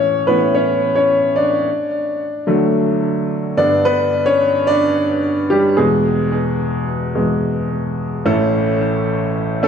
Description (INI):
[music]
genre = pop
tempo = 109 BPM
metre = 4/4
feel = straight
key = A major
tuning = A4 = 441 Hz
[part]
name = bright upright piano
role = solo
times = 0.0-9.7 s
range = A1 to D5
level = -14 LUFS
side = equal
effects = digital delay
[sound]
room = moderate large studio reverb, RT60 1.3 s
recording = dark, warm production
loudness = -14 LUFS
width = side -7 dB against mid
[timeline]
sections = 0.0-8.3 A section; 8.3-9.7 B section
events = upright piano solo 0.0-8.3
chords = 0.0 A; 1.7 D; 3.6 G; 5.8 E; 8.3 A